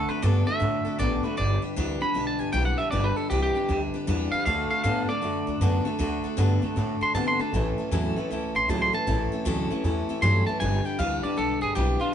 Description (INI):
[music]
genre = rockabilly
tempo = 156 BPM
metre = 4/4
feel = swing 64% on 8ths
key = D major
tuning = A4 = 440 Hz
[part]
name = twangy electric guitar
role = melody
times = 0.0-12.1 s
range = F4 to C6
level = -27 LUFS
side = right 1 dB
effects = none
[part]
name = picked steel-string acoustic guitar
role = accompaniment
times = 0.0-12.1 s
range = A2 to B4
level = -32 LUFS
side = left 2 dB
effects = none
[part]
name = electric guitar through a small old amp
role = riff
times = 0.0-12.1 s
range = G2 to B3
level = -29 LUFS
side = left 1 dB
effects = none
[part]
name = upright bass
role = bass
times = 0.0-12.0 s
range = G1 to C3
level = -27 LUFS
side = equal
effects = none
[sound]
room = moderate stone room reverb, RT60 1.0 s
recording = band playing live in one room, nothing above 10.6 kHz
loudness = -23 LUFS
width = side -9 dB against mid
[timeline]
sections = 0.0-12.1 A section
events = clean electric guitar solo 0.0-12.1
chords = 0.0 D; 1.4 G; 4.5 D; 7.5 A; 10.6 G